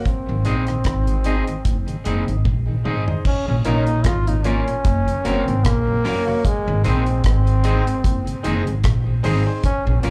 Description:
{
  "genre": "roots reggae",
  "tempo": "75 BPM",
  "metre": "4/4",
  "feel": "swing 56% on 16ths",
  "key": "unclear",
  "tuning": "A4 = 441 Hz",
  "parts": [
    { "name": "clear trombone", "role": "melody", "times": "0.0-10.1 s", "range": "Ab3 to F4", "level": "-27 LUFS", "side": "equal", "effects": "tape echo, slapback echo" },
    { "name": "deep reggae drum kit", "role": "drums", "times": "0.1-10.1 s", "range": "crash cymbal, hi-hat, kick drum, rim click, toms", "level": "-23 LUFS", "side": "equal", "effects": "none" },
    { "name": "mellow tonewheel organ", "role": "accompaniment", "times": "0.3-10.1 s", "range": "Gb2 to Eb4", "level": "-32 LUFS", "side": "equal", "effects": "slow rotary speaker, tape echo" },
    { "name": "upright bass", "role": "bass", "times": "0.3-10.1 s", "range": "Gb1 to Bb1", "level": "-22 LUFS", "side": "equal", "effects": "none" },
    { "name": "clear baby grand piano", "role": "stabs", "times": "0.4-10.1 s", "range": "C4 to Eb5", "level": "-31 LUFS", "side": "equal", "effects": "slapback echo" },
    { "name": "electric guitar at the edge of break-up", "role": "accompaniment", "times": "0.5-10.1 s", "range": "Ab3 to Bb4", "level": "-32 LUFS", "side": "equal", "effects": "tape echo, slapback echo" }
  ],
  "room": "little or no reverb",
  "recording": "live gig heard through the venue's PA, club reverb",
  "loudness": "-20 LUFS",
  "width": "mono",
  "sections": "0.0-3.2 A section; 3.2-10.1 B section",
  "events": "drum fill 2.5-3.2",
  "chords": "0.1 Ab; 3.2 Bbm; 4.8 Gb; 6.4 Ab",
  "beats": "| 0.06 0.85 1.65 2.45 | 3.25 4.05 4.85 5.65 | 6.44 7.24 8.04 8.84 | 9.64"
}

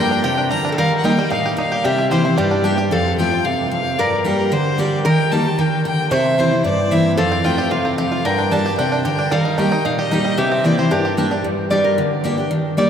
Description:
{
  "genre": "bluegrass",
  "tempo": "225 BPM",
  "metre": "4/4",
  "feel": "straight",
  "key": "G minor",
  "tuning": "A4 = 440 Hz",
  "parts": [
    { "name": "bluegrass banjo", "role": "melody", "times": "0.0-2.9, 7.2-11.6 s", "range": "D3 to G4", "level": "-24 LUFS", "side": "right 3 dB", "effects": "tape echo" },
    { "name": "rich fiddle", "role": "melody", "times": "0.0-11.3 s", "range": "Bb4 to Bb5", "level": "-22 LUFS", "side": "left 2 dB", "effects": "none" },
    { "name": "lap resonator guitar", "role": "second line", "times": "0.0-12.9 s", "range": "G4 to D5", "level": "-22 LUFS", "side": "left 1 dB", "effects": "none" },
    { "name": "picked steel-string acoustic guitar", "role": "accompaniment", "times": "0.0-12.9 s", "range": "F2 to G4", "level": "-18 LUFS", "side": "equal", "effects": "none" }
  ],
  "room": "wet cathedral reverb, RT60 5.7 s",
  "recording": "in a vast, echoing space",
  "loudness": "-15 LUFS",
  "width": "side -8 dB against mid",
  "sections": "0.0-2.9 A section; 2.9-11.4 A section; 11.4-12.9 B section",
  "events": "resonator guitar played with a steel bar solo 11.4-12.9",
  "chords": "0.0 Gm; 0.8 Eb; 1.8 C7; 2.4 Gm; 2.9 F; 4.0 Gm; 5.0 Eb; 6.1 C7; 7.2 F; 8.2 Gm; 9.3 Eb; 10.4 C7; 10.9 Gm",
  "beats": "0.24 0.51 | 0.78 1.04 1.31 1.58 | 1.84 2.11 2.38 2.65 | 2.91 3.18 3.45 3.71 | 3.98 4.25 4.52 4.78 | 5.05 5.32 5.58 5.85 | 6.12 6.38 6.65 6.92 | 7.18 7.45 7.72 7.98 | 8.25 8.52 8.78 9.05 | 9.31 9.58 9.85 10.11 | 10.38 10.65 10.91 11.18 | 11.45 11.71 11.98 12.24 | 12.51 12.78"
}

